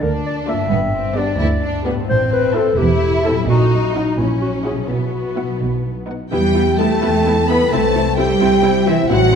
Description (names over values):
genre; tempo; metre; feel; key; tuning
cinematic, playful, whimsical film cue; 86 BPM (dotted quarters); 6/8; straight; E minor; A4 = 440 Hz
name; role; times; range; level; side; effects
dark clarinet; second line; 0.0-6.1 s; D#4 to E5; -20 LUFS; left 2 dB; none
warm studio violin section; second line; 0.0-9.4 s; B3 to B5; -24 LUFS; left 2 dB; none
concert harp; arpeggios; 0.0-9.4 s; G2 to G5; -24 LUFS; left 5 dB; none
rich studio cello section; bass; 0.0-9.4 s; D2 to B3; -22 LUFS; right 2 dB; none
warm studio double bass section; bass; 0.0-9.4 s; E1 to E2; -21 LUFS; right 4 dB; none
warm studio violin section; melody; 0.5-9.4 s; D5 to B5; -27 LUFS; left 4 dB; none
rich studio viola section; accompaniment; 0.5-9.4 s; Bb3 to G4; -26 LUFS; right 2 dB; none
dark French horn section; sustained chords; 6.3-9.4 s; E4 to B4; -17 LUFS; left 1 dB; none
room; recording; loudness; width
wet concert hall reverb, RT60 2.3 s; minimal, uncompressed stereo recording; -14 LUFS; side -7 dB against mid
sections
0.0-6.3 A section; 6.3-9.4 B section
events
none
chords
0.0 Bb/D; 0.7 G; 2.1 Am7; 3.5 F#7/A#; 4.9 Bsus4; 5.6 B; 6.3 Em; 7.7 C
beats
0.02 | 0.71 1.40 | 2.09 2.78 | 3.48 4.19 | 4.90 5.61 | 6.32 7.02 | 7.72 8.41 | 9.10